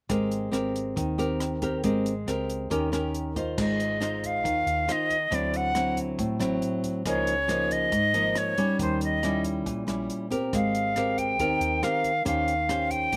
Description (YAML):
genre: bossa nova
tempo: 138 BPM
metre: 4/4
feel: straight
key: Ab major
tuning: A4 = 440 Hz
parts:
  - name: nylon-string guitar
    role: accompaniment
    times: 0.1-13.2 s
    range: Ab2 to C5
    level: -30 LUFS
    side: equal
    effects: none
  - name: hollow-body short-scale fingered electric bass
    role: bass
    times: 0.1-13.2 s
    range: Ab1 to Eb2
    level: -38 LUFS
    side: equal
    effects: none
  - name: compact cocktail drum kit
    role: drums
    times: 0.1-13.2 s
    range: crash cymbal, hi-hat, kick drum, rim click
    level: -39 LUFS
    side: equal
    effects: none
  - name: bright silver concert flute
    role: melody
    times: 3.6-13.2 s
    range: C5 to G5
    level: -28 LUFS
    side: equal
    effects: none
room: little or no reverb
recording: recorded outdoors, with no room sound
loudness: -27 LUFS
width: mono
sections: 0.1-3.6 A section; 3.6-13.2 B section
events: none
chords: 0.1 Abmaj9; 2.7 Eb7; 3.6 Ab6; 5.3 D9; 7.1 Db69; 8.8 Eb7b9; 10.5 Abmaj9; 12.3 Eb13